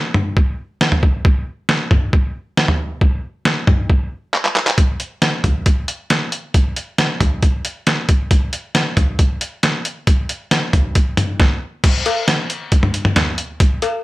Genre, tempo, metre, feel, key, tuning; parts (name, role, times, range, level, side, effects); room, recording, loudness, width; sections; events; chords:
pop; 136 BPM; 4/4; straight
trip hop sampler-style drum kit; drums; 0.1-13.9 s; cowbell, crash cymbal, handclaps, hi-hat, kick drum, snare drum, toms; -14 LUFS; equal
moderate studio reverb, RT60 0.6 s; -15 LUFS; side -19 dB against mid
0.0-4.8 A section; 4.8-11.8 B section; 11.8-14.0 C section
drum fill 4.3-4.8